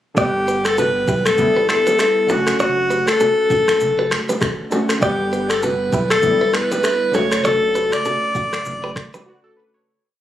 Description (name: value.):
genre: afrobeats.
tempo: 99 BPM.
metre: 4/4.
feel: swing 58% on 16ths.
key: D major.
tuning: A4 = 440 Hz.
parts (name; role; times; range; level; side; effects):
warm analog keys; accompaniment; 0.1-10.0 s; C#3 to F#5; -24 LUFS; left 1 dB; chorus.
breathy alto saxophone; melody; 0.2-9.1 s; F#4 to D5; -17 LUFS; left 1 dB; tape echo.
direct-recorded clean electric guitar; riff; 0.2-9.2 s; D4 to D5; -24 LUFS; right 2 dB; tape echo.
warm sub bass; bass; 0.2-9.0 s; D1 to B1; -30 LUFS; right 1 dB; none.
afro-pop drum kit; drums; 0.2-9.3 s; finger snaps, kick drum, rim click, shaker; -22 LUFS; equal; none.
congas and bongos; percussion; 0.2-9.3 s; none; -27 LUFS; left 3 dB; none.
room: digital ambience.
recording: recorded on a phone in the room, studio ambience.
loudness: -15 LUFS.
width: side -12 dB against mid.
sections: 0.2-9.9 verse.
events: fade-out 7.4-9.9; break 9.3-9.9.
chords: 0.2 Gmaj7; 1.4 Em7; 2.3 Dmaj7; 5.0 Gmaj7; 6.2 Em7; 7.1 Dmaj7.